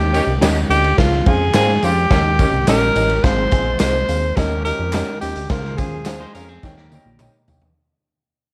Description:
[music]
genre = uptempo 1960s-style soul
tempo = 106 BPM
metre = 4/4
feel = straight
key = unclear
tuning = A4 = 440 Hz
[part]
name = breathy tenor saxophone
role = melody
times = 0.0-6.6 s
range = F4 to C5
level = -22 LUFS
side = equal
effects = none
[part]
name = dark upright piano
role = accompaniment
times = 0.0-7.6 s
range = Ab2 to Ab5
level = -28 LUFS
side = equal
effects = none
[part]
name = fat analog bass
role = bass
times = 0.0-7.7 s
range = Ab1 to Ab2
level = -24 LUFS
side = equal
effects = none
[part]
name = mellow horn section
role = second line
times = 0.1-7.5 s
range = C3 to C5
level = -32 LUFS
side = equal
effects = none
[part]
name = raw garage drum kit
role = drums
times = 0.1-7.8 s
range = hi-hat, kick drum, ride cymbal, snare drum, toms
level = -22 LUFS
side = equal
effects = none
[part]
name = tambourine and handclaps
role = percussion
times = 0.1-7.6 s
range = none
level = -36 LUFS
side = equal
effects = none
[part]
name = electric guitar through a small old amp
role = stabs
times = 0.4-7.3 s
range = F4 to F5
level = -32 LUFS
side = equal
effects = none
[part]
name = electric guitar at the edge of break-up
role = riff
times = 6.2-7.6 s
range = Bb3 to C5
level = -48 LUFS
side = equal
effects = none
[sound]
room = studio reverb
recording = vinyl crackle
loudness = -17 LUFS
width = mono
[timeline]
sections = 0.0-3.2 A section; 3.2-7.8 B section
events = fade-out 3.2-7.8; drum fill 6.6-7.8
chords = 0.0 Eb7; 1.0 Dbmaj7; 2.1 Eb7; 3.2 Ab6; 4.4 Eb7; 5.5 Dbmaj7; 6.6 Eb7

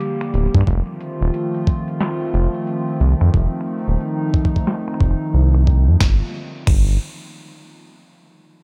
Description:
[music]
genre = IDM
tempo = 90 BPM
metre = 4/4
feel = swing 62% on 16ths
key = G minor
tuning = A4 = 439 Hz
[part]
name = hollow soft pad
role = sustained chords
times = 0.0-6.3 s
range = D3 to G4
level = -26 LUFS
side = equal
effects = chorus, vintage 12-bit sampler grit
[part]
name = electro analog drum machine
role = drums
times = 0.0-6.8 s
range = crash cymbal, finger snaps, hi-hat, snare drum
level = -31 LUFS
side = equal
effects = low-pass filter on snare, low-pass filter on hats, low-pass filter on cymbals, analog delay
[part]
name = round analog bass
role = bass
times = 0.3-7.0 s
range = D1 to G2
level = -17 LUFS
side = equal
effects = none
[part]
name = electronic kick drum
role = drums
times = 0.5-6.8 s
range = none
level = -20 LUFS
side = equal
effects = none
[sound]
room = light reverb, digital ambience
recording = none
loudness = -19 LUFS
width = mono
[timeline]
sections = 0.0-6.0 A section; 6.0-8.6 B section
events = filter sweep on drum 0.0-6.0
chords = 0.0 Gm7; 0.7 F7; 6.0 Gm7

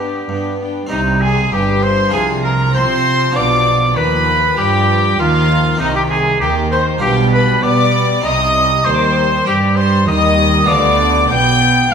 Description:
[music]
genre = classical, baroque-style concerto movement with solo episodes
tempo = 98 BPM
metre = 4/4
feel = straight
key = C minor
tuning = A4 = 441 Hz
[part]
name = clear oboe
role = melody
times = 0.0-11.9 s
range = Eb4 to G5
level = -17 LUFS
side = equal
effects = none
[part]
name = rich chamber violin section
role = melody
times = 0.0-11.9 s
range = Eb5 to G6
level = -21 LUFS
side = left 2 dB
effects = none
[part]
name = rich chamber violin section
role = second line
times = 0.0-11.9 s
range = D4 to G5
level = -20 LUFS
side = left 3 dB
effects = none
[part]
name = harpsichord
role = accompaniment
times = 0.0-11.9 s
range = G2 to Ab4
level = -24 LUFS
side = right 1 dB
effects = none
[part]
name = warm studio viola section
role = accompaniment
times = 0.0-11.9 s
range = Eb3 to B3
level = -22 LUFS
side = left 2 dB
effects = none
[part]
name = warm chamber cello section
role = bass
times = 0.0-11.9 s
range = G2 to C4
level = -20 LUFS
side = right 2 dB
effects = none
[part]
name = rich chamber double bass section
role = bass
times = 0.9-11.9 s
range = G1 to C3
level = -19 LUFS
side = right 3 dB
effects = none
[sound]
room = moderate scoring stage reverb, RT60 1.6 s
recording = minimal, uncompressed stereo recording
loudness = -12 LUFS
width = side -6 dB against mid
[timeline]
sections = 0.9-11.9 A section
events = none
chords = 0.0 G; 0.9 Cm; 2.1 Dm7b5/C; 3.4 G7/B; 5.8 Cm; 7.0 G7/B; 8.2 Cm; 10.7 G7

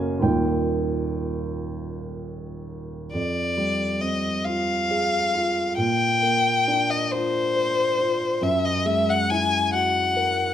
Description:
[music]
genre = classical, impressionist duo for violin and grand piano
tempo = 40-46 BPM (dotted quarters)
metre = 6/8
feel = rubato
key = F dorian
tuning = A4 = 440 Hz
[part]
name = dark baby grand piano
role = accompaniment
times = 0.0-10.5 s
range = Eb1 to Ab5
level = -25 LUFS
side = right 2 dB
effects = none
[part]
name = rich violin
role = melody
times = 3.1-10.5 s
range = C5 to Ab5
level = -22 LUFS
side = left 3 dB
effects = none
[sound]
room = moderate large studio reverb, RT60 1.3 s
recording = none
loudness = -20 LUFS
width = side -10 dB against mid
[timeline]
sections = 0.0-3.1 A section; 3.1-10.5 B section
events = none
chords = 0.2 Ebadd9; 3.1 Fmadd9; 5.8 Bb69; 8.4 Gb9

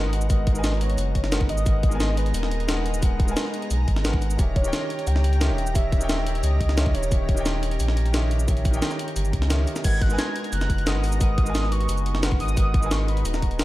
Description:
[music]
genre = liquid drum and bass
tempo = 176 BPM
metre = 4/4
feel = straight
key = G# minor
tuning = A4 = 440 Hz
[part]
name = warm velvety synth lead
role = melody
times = 0.0-7.6, 9.8-13.6 s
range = A#4 to G#6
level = -32 LUFS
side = equal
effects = chorus, digital delay
[part]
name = warm grand piano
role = accompaniment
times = 0.0-13.6 s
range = D#3 to G#5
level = -31 LUFS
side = left 1 dB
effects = digital delay
[part]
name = lush unison pad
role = sustained chords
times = 0.0-13.6 s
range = B3 to A#5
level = -35 LUFS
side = left 1 dB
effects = chorus, sidechain pumping
[part]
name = sub bass with octave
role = bass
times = 0.0-13.6 s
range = D#1 to C#2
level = -24 LUFS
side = equal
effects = none
[part]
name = jungle sampler-style drum kit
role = drums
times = 0.1-13.6 s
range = cabasa, crash cymbal, hi-hat, snare drum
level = -29 LUFS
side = equal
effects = none
[part]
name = electronic kick drum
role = drums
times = 0.3-13.5 s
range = none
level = -22 LUFS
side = equal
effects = none
[sound]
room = little or no reverb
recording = dark, warm production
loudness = -20 LUFS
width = side -16 dB against mid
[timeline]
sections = 0.0-9.8 A section; 9.8-13.6 A section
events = drop 0.0-9.8, 9.8-13.6; kick drops out 9.5-9.8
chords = 0.0 G#m9; 4.4 D#7b9; 9.8 G#m9

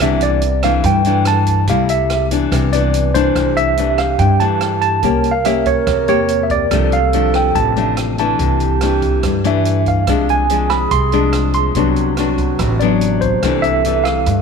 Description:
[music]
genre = bossa nova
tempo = 143 BPM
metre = 4/4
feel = straight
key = C major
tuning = A4 = 440 Hz
[part]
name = barky tine electric piano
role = melody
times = 0.0-14.4 s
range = C5 to C6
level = -18 LUFS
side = right 3 dB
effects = medium stereo tremolo
[part]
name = nylon-string guitar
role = accompaniment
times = 0.0-14.4 s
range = G2 to G4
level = -18 LUFS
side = left 10 dB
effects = none
[part]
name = upright bass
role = bass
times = 0.0-14.4 s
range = A1 to G2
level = -18 LUFS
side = right 1 dB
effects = none
[part]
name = open jazz drum kit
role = drums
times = 0.0-14.4 s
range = hi-hat, kick drum, rim click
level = -25 LUFS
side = right 5 dB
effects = none
[part]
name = mellow hollow alto flute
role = second line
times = 3.4-14.4 s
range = F#4 to Bb4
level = -22 LUFS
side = right 12 dB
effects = none
[sound]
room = light reverb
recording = 1960s-style stereo with parts hard left and right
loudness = -13 LUFS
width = side -6 dB against mid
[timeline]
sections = 0.0-3.4 A section; 3.4-14.4 B section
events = tine electric piano solo 0.0-3.4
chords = 0.0 C69; 1.7 Cmaj13; 2.5 Cmaj9; 3.4 C69; 5.0 C7b9; 6.7 Dm7/C; 8.4 C69; 10.1 Fm6/C; 11.8 D6/C; 13.4 C69

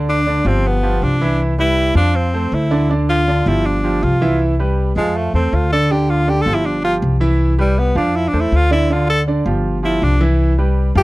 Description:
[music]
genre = latin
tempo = 160 BPM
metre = 4/4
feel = straight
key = C major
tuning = A4 = 440 Hz
[part]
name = clear concert grand piano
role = accompaniment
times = 0.0-11.0 s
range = D3 to F5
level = -20 LUFS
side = right 3 dB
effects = none
[part]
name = upright bass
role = bass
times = 0.0-11.0 s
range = G1 to F2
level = -17 LUFS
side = left 1 dB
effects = none
[part]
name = clear tenor saxophone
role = melody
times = 0.1-11.0 s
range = G3 to A4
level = -18 LUFS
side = equal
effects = none
[sound]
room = little or no reverb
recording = dry, close 1970s-style studio recording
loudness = -14 LUFS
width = side -19 dB against mid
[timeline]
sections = 0.0-11.0 A section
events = tenor saxophone solo 0.0-11.0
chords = 0.0 Dm; 0.6 G7; 1.4 Cmaj7; 2.1 F; 2.9 Dm; 3.7 G5; 4.4 Cmaj7; 5.2 F; 5.9 Dm; 6.7 Dm11/G; 7.4 Cmaj7; 8.2 F; 8.9 Dm; 9.6 Dm11/G; 10.4 Cmaj7

